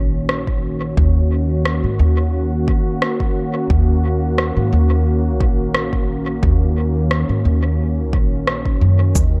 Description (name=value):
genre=ambient dub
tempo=88 BPM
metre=4/4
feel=swing 54% on 16ths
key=Eb minor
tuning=A4 = 440 Hz
part: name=warm analog pad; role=sustained chords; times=0.0-9.4 s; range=Eb3 to Db5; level=-24 LUFS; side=equal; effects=chorus
part: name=upright bass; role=bass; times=0.0-9.4 s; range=Bb1 to Ab2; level=-19 LUFS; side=equal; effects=tube saturation
part: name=electronic rim click and cabasa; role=drums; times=0.3-9.3 s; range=none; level=-26 LUFS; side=equal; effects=dub echo
part: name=electronic kick drum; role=drums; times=0.5-9.3 s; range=none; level=-21 LUFS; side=equal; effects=overdrive
room=light reverb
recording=none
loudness=-17 LUFS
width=mono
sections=0.0-9.4 A section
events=none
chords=0.0 Ebm7